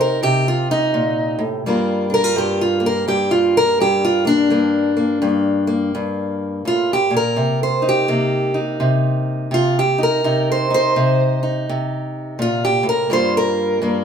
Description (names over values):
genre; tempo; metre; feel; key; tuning
acoustic country blues, solo or duo; 84 BPM; 4/4; swing 62% on 8ths; G minor; A4 = 440 Hz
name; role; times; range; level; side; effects
fingerpicked steel-string acoustic guitar; solo; 0.0-14.0 s; G2 to C5; -16 LUFS; equal; none
room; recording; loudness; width
wet studio reverb, RT60 0.6 s; band playing live in one room; -16 LUFS; side -7 dB against mid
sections
0.0-14.0 A section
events
steel-string acoustic guitar solo 0.0-14.0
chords
0.0 Cm7; 1.6 Gm7; 7.4 Cm7; 13.1 Gm7